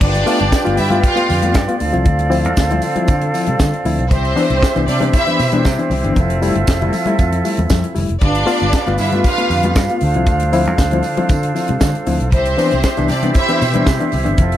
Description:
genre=disco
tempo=117 BPM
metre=4/4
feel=straight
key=C major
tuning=A4 = 442 Hz
part: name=clear studio string section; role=second line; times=0.0-13.8 s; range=C4 to F5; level=-19 LUFS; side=equal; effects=none
part: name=barky reed electric piano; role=accompaniment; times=0.0-14.5 s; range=G2 to F4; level=-20 LUFS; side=left 3 dB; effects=overdrive, fast tremolo
part: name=flute section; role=sustained chords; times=0.0-14.6 s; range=C4 to G5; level=-20 LUFS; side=right 2 dB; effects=none
part: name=fingered electric bass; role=bass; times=0.0-14.6 s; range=F1 to D3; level=-19 LUFS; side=equal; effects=none
part: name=tight funk drum kit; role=drums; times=0.0-14.6 s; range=crash cymbal, hi-hat, kick drum, snare drum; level=-18 LUFS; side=equal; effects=none
part: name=congas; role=percussion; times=0.0-14.5 s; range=none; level=-26 LUFS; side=left 4 dB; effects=none
part: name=tambourine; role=percussion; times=0.3-14.5 s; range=none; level=-34 LUFS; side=right 9 dB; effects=none
room=little or no reverb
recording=none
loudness=-13 LUFS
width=side -12 dB against mid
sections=0.0-14.6 A section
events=none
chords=0.0 G7; 1.8 Dm7; 4.1 Cmaj7; 6.2 Fmaj7; 8.2 G7; 10.0 Dm7; 12.3 Cmaj7

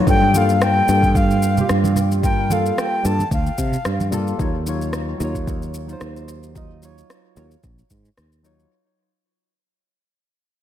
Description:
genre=sunset chillout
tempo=111 BPM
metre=4/4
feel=swing 55% on 16ths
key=G minor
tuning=A4 = 440 Hz
part: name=soft electric-piano-like synth keys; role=accompaniment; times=0.0-8.7 s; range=Gb3 to Eb5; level=-26 LUFS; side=moving between left 4 dB and right 6 dB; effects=chorus, auto-pan, low-pass filter, tape echo
part: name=breathy bright concert flute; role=melody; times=0.1-4.1 s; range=F5 to A5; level=-21 LUFS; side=left 1 dB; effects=analog delay
part: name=sustaining fretless electric bass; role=bass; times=0.1-8.6 s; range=Bb1 to C3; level=-20 LUFS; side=equal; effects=wide subtle chorus
part: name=electronic kick drum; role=drums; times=0.1-8.0 s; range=none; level=-22 LUFS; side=equal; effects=none
part: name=electronic shaker and rim click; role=drums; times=0.1-8.7 s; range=none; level=-27 LUFS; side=left 1 dB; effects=analog delay
part: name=congas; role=percussion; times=0.3-4.2 s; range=none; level=-29 LUFS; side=right 2 dB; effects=none
room=moderate echo chamber reverb, RT60 1.4 s, digital ambience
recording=echo-heavy mix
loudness=-16 LUFS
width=side -11 dB against mid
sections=0.1-8.7 A section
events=fade-out 0.1-8.7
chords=0.1 Gm9; 4.4 Ebm9

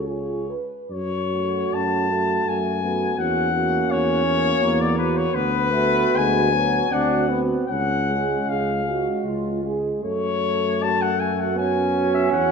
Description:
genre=classical, hymn-like piece for brass band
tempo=70-84 BPM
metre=3/4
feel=rubato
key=F# minor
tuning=A4 = 441 Hz
part: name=mellow cornet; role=melody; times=0.0-12.5 s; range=B4 to A5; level=-23 LUFS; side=left 6 dB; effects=none
part: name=dark French horn section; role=second line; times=0.0-12.5 s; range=E#4 to B4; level=-27 LUFS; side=right 6 dB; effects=none
part: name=mellow euphonium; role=accompaniment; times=0.0-12.5 s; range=G#3 to E#4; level=-29 LUFS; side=left 2 dB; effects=none
part: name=warm trombone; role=accompaniment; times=0.0-12.5 s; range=C#3 to D4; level=-27 LUFS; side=right 4 dB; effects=none
part: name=mellow tuba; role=bass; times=0.0-12.5 s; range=C#2 to F#2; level=-26 LUFS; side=equal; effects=none
room=moderate scoring stage reverb, RT60 1.8 s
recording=minimal, uncompressed stereo recording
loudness=-19 LUFS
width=side -5 dB against mid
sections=0.9-12.5 A section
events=none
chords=0.1 C#; 0.9 F#m; 3.2 F#7/E; 5.4 Bm/D; 6.9 D7; 7.7 C#; 10.0 F#m

